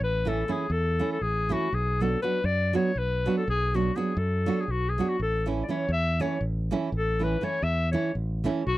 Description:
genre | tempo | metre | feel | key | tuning
balkan folk, Balkan wedding band | 242 BPM (eighths) | 7/8 | straight | A major | A4 = 440 Hz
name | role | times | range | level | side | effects
bright clarinet | melody | 0.0-8.8 s | F#4 to E5 | -28 LUFS | left 3 dB | none
fingered electric bass | bass | 0.0-8.8 s | A1 to F#2 | -28 LUFS | equal | none
nylon-string guitar | accompaniment | 0.3-8.6 s | E3 to F#4 | -28 LUFS | right 4 dB | none
room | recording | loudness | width
light reverb | dry, close 1970s-style studio recording | -24 LUFS | side -16 dB against mid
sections
0.0-8.8 A section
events
none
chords
0.0 A; 1.7 Bm; 5.2 A

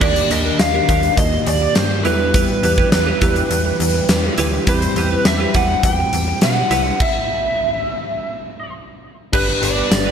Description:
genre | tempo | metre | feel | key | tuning
1980s-style pop | 103 BPM | 4/4 | straight | unclear | A4 = 440 Hz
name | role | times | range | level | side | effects
lead guitar through a small cranked amp | melody | 0.0-10.1 s | B4 to G5 | -20 LUFS | right 1 dB | overdrive, analog chorus, digital delay
tine electric piano | accompaniment | 0.0-10.1 s | Eb3 to B5 | -25 LUFS | left 2 dB | medium stereo tremolo
warm analog pad | sustained chords | 0.0-10.1 s | D3 to G4 | -27 LUFS | left 1 dB | chorus
direct-recorded clean electric guitar | riff | 0.0-10.1 s | D4 to B4 | -25 LUFS | right 6 dB | analog chorus, digital delay
slap-like FM bass | bass | 0.0-10.1 s | G1 to B2 | -22 LUFS | equal | none
huge arena drum kit | drums | 0.0-10.1 s | crash cymbal, hi-hat, kick drum, snare drum, tambourine | -18 LUFS | equal | gated reverb
room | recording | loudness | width
moderate plate reverb, RT60 1.7 s, small room ambience | bright 1980s-style digital production | -14 LUFS | side -8 dB against mid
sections
0.0-9.3 A section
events
stop 7.0-9.3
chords
0.0 Ebmaj7; 2.1 Em; 4.7 Cmaj7/E; 7.0 N.C.; 9.3 G

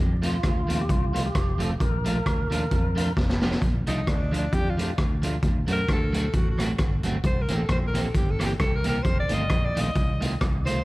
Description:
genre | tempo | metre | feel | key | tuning
ska | 132 BPM | 4/4 | swing 56% on 8ths | Bb major | A4 = 440 Hz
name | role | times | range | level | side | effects
fingered electric bass | bass | 0.0-10.8 s | F1 to F#2 | -28 LUFS | equal | none
electric guitar at the edge of break-up | accompaniment | 0.2-10.8 s | Eb3 to G4 | -31 LUFS | right 2 dB | lush chorus, dub echo
raw garage drum kit | drums | 0.2-10.8 s | hi-hat, kick drum, rim click, snare drum | -25 LUFS | equal | none
tonewheel organ | melody | 0.3-3.1 s | F4 to Bb4 | -32 LUFS | equal | slow rotary speaker, dub echo
bright alto saxophone | melody | 3.9-10.8 s | D4 to Eb5 | -30 LUFS | equal | dub echo
room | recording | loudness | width
studio reverb | vinyl crackle | -22 LUFS | side -20 dB against mid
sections
0.0-3.6 A section; 3.6-10.8 B section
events
drum fill 3.2-3.6; alto saxophone solo 3.6-10.8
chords
0.0 F; 1.8 Bbmaj7; 3.6 Bbmaj7 (rootless); 5.4 D7; 7.2 C7; 9.1 F7

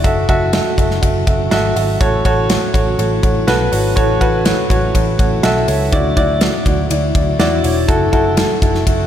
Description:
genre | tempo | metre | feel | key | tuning
piano-driven pop | 122 BPM | 4/4 | straight | A major | A4 = 437 Hz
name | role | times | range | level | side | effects
dark baby grand piano | accompaniment | 0.0-9.1 s | A2 to E5 | -16 LUFS | equal | slapback echo
shimmering ambient pad | sustained chords | 0.0-9.1 s | C#3 to F#4 | -23 LUFS | left 1 dB | chorus, built-in reverb
vintage muted picked electric bass | bass | 0.0-9.1 s | E1 to E2 | -19 LUFS | equal | none
modern studio drum kit | drums | 0.0-9.0 s | hi-hat, kick drum, ride cymbal, snare drum | -17 LUFS | equal | none
room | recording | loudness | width
light reverb, small room ambience | none | -12 LUFS | side -10 dB against mid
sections
0.0-9.1 A section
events
none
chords
0.0 F#m7; 2.0 A6; 5.9 Dadd9; 7.9 F#m7

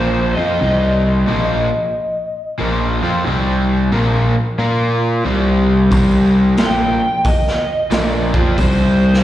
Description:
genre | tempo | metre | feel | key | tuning
blues rock power trio and southern rock | 90 BPM | 4/4 | swing 64% on 8ths | C minor | A4 = 439 Hz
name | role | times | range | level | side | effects
lead guitar through a small cranked amp | melody | 0.0-9.2 s | C5 to G5 | -20 LUFS | equal | overdrive, slapback echo, digital delay
overdriven semi-hollow guitar | riff | 0.0-9.2 s | Bb2 to Bb4 | -16 LUFS | equal | slapback echo
fuzz picked electric bass | bass | 0.0-9.2 s | Bb1 to Bb2 | -18 LUFS | equal | overdrive
raw garage drum kit | drums | 5.9-9.2 s | hi-hat, kick drum, snare drum | -18 LUFS | equal | none
room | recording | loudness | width
studio ambience | live gig heard through the venue's PA, recital hall reverb | -13 LUFS | side -13 dB against mid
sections
0.0-9.2 A section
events
none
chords
0.0 Cm; 4.6 Bb5; 5.3 C5

